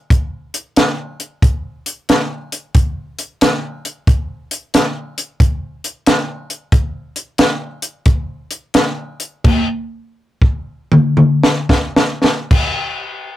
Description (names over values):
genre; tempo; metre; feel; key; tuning
blues; 72-91 BPM; 4/4; swing 66% on 8ths; none; none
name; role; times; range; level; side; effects
compact cocktail drum kit; drums; 0.1-12.8 s; crash cymbal, hi-hat, kick drum, snare drum, toms; -13 LUFS; equal; none
room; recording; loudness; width
moderate small room reverb, RT60 0.5 s; rough rehearsal-room recording, warm saturation; -14 LUFS; side -14 dB against mid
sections
0.0-12.5 A section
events
slowing down 6.7-12.5; drum fill 9.4-12.5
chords
none